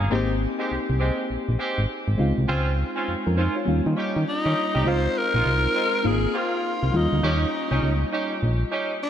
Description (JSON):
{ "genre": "R&B", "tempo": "101 BPM", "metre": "4/4", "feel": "swing 62% on 16ths", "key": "Ab major", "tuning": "A4 = 440 Hz", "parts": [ { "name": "mellow FM electric piano", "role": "accompaniment", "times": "0.0-9.1 s", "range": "G3 to Bb5", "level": "-28 LUFS", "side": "left 1 dB", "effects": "chorus, phaser" }, { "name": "warm horn section", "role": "stabs", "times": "0.0-8.9 s", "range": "Ab3 to Ab4", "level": "-28 LUFS", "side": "right 2 dB", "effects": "analog delay" }, { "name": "solid FM bass", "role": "bass", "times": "0.0-8.6 s", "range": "G1 to Eb3", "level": "-23 LUFS", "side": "equal", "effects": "none" }, { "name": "growling tenor saxophone", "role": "melody", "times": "4.3-9.1 s", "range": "Eb4 to C5", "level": "-25 LUFS", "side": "left 1 dB", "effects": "none" } ], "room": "wet plate reverb, RT60 3.3 s", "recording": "dreamy mix soaked in reverb", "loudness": "-21 LUFS", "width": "side -9 dB against mid", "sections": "0.0-4.9 A section; 4.9-9.1 B section", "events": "none", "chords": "0.1 Abmaj7; 2.2 Dbmaj7; 3.7 Eb7; 4.9 Dbmaj9; 6.0 Ab69; 6.9 Eb7", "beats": "| 0.11 0.70 1.30 1.89 | 2.48 3.08 3.67 4.27 | 4.86 5.46 6.05 6.64 | 7.24 7.83 8.43 9.02" }